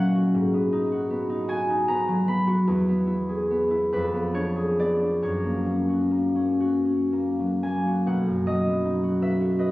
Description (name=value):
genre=classical, solo harp piece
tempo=38-54 BPM (dotted quarters)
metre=6/8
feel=rubato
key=B major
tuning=A4 = 440 Hz
part: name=concert harp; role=solo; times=0.0-9.7 s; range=B1 to B5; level=-22 LUFS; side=equal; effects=none
room=moderate recital hall reverb, RT60 1.6 s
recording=recorded on a phone in the room, studio reverb, compression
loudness=-22 LUFS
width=side -17 dB against mid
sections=0.0-8.1 A section; 8.1-9.7 B section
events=none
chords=0.3 G#m7; 2.7 E; 3.9 Fdim7; 5.2 F#; 8.1 B